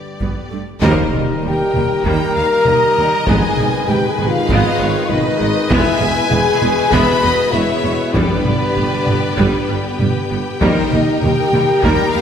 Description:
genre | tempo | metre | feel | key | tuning
cinematic, epic orchestral film score | 98 BPM | 4/4 | straight | unclear | A4 = 441 Hz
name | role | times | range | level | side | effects
clear symphonic violin section | melody | 0.0-12.2 s | Bb4 to G#5 | -25 LUFS | left 4 dB | none
rich symphonic violin section | second line | 0.0-12.2 s | G4 to B5 | -25 LUFS | left 2 dB | none
bright trombone section | sustained chords | 0.0-12.1 s | B2 to Ab3 | -26 LUFS | right 3 dB | none
dark French horn section | sustained chords | 0.0-12.2 s | B3 to B4 | -20 LUFS | left 3 dB | none
clear symphonic viola section | accompaniment | 0.2-12.2 s | G3 to B3 | -26 LUFS | equal | none
rich symphonic cello section | bass | 0.2-12.2 s | Eb2 to Ab2 | -23 LUFS | right 2 dB | none
taiko ensemble | drums | 0.2-12.2 s | none | -21 LUFS | equal | none
large flute ensemble | second line | 0.8-12.2 s | D5 to B5 | -25 LUFS | left 2 dB | none
rich symphonic string section | sustained chords | 0.8-12.2 s | B3 to G5 | -25 LUFS | left 2 dB | none
dark trumpet section | stabs | 0.8-12.1 s | Bb4 to Cb5 | -23 LUFS | left 1 dB | none
mellow tuba | bass | 0.8-12.2 s | E1 to Eb2 | -24 LUFS | right 3 dB | none
rich symphonic double bass section | bass | 0.8-12.2 s | E1 to Eb2 | -25 LUFS | right 3 dB | none
timpani | percussion | 0.8-1.7 s | Eb3 | -26 LUFS | left 3 dB | none
impact | sound effects | 0.8-3.3 s | none | -30 LUFS | equal | none
room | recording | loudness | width
wet scoring stage reverb, RT60 1.9 s | none | -13 LUFS | side -8 dB against mid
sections
0.8-12.2 A section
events
band accent 0.8-1.4; impact 0.8-3.3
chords
0.0 G; 0.8 Eb; 3.3 Abm; 5.7 E; 8.1 G; 10.6 Eb

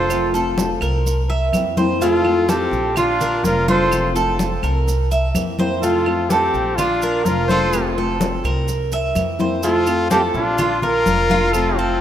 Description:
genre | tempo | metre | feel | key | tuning
latin, Cuban son and guajira | 126 BPM | 4/4 | straight | F major | A4 = 439 Hz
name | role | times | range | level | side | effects
trumpet with bucket mute | melody | 0.0-12.0 s | F4 to C5 | -22 LUFS | equal | none
bright trumpet | second line | 0.0-12.0 s | C4 to A4 | -26 LUFS | left 4 dB | none
flamenco guitar | accompaniment | 0.0-12.0 s | C3 to F4 | -25 LUFS | left 4 dB | none
Cuban tres | arpeggios | 0.0-12.0 s | F4 to E5 | -21 LUFS | right 2 dB | none
upright bass | bass | 0.0-12.0 s | F1 to F2 | -23 LUFS | equal | none
claves | percussion | 0.1-11.8 s | none | -34 LUFS | right 5 dB | none
congas | percussion | 0.1-12.0 s | none | -25 LUFS | left 2 dB | none
maracas | percussion | 0.1-11.8 s | none | -35 LUFS | right 7 dB | none
room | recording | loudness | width
moderate lush hall reverb, RT60 2.6 s | rough home demo mix | -16 LUFS | side -10 dB against mid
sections
0.0-12.0 A section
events
none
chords
0.1 F; 1.1 C7; 2.0 F; 3.0 Bb; 3.9 F; 4.9 C7; 5.8 F; 6.8 Bb; 7.7 F; 8.7 C7; 9.6 F; 10.6 Bb

